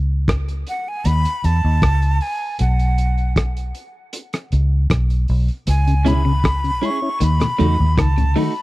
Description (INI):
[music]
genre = roots reggae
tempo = 78 BPM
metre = 4/4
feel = straight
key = C# minor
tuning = A4 = 439 Hz
[part]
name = vintage muted fingered electric bass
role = bass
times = 0.0-8.3 s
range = B1 to E2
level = -16 LUFS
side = equal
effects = none
[part]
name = cloth-damped thuddy drum kit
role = drums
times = 0.3-8.6 s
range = hi-hat, kick drum, rim click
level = -21 LUFS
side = equal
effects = none
[part]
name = breathy bright jazz flute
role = melody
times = 0.7-8.6 s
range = F#5 to C#6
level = -24 LUFS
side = equal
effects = dub echo
[part]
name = mellow tonewheel organ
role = accompaniment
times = 5.9-8.4 s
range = D#2 to E4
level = -24 LUFS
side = left 2 dB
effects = chorus vibrato, slow rotary speaker
[part]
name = clean electric guitar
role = accompaniment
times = 6.0-8.5 s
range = A3 to G#4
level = -24 LUFS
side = right 6 dB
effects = dub echo
[part]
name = electric guitar at the edge of break-up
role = arpeggios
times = 6.0-8.5 s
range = B2 to D#3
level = -24 LUFS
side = left 5 dB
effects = phaser
[sound]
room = little or no reverb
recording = dry, close 1970s-style studio recording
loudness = -16 LUFS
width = side -18 dB against mid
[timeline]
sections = 0.0-8.6 A section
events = none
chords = 0.0 N.C.; 1.1 C#m9; 2.6 B5; 5.7 C#m; 7.2 D#dim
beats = 0.28 1.05 1.82 | 2.59 3.36 4.13 4.90 | 5.67 6.44 7.21 7.98